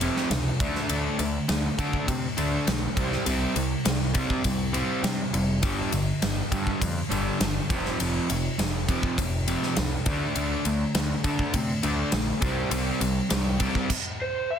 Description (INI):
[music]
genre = hard rock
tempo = 102 BPM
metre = 4/4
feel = straight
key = unclear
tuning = A4 = 436 Hz
[part]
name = overdriven semi-hollow guitar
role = riff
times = 0.0-13.9 s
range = F2 to D4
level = -27 LUFS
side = equal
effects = none
[part]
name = growling picked electric bass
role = bass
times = 0.0-13.7 s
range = F1 to D3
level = -30 LUFS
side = equal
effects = overdrive
[part]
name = big rock drum kit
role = drums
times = 0.0-14.0 s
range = crash cymbal, kick drum, ride cymbal, snare drum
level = -28 LUFS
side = equal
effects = none
[part]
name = lead guitar through a small cranked amp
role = melody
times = 14.2-14.6 s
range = C5 to F5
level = -26 LUFS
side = right 2 dB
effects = overdrive
[sound]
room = light reverb, small room ambience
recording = dense, heavily limited modern master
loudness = -24 LUFS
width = side -8 dB against mid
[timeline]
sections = 0.0-14.6 A section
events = stop 13.9-14.6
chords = 0.0 F5; 0.6 D5; 3.0 C5; 5.6 G5; 7.7 F5; 10.1 D5; 12.4 C5; 13.9 N.C.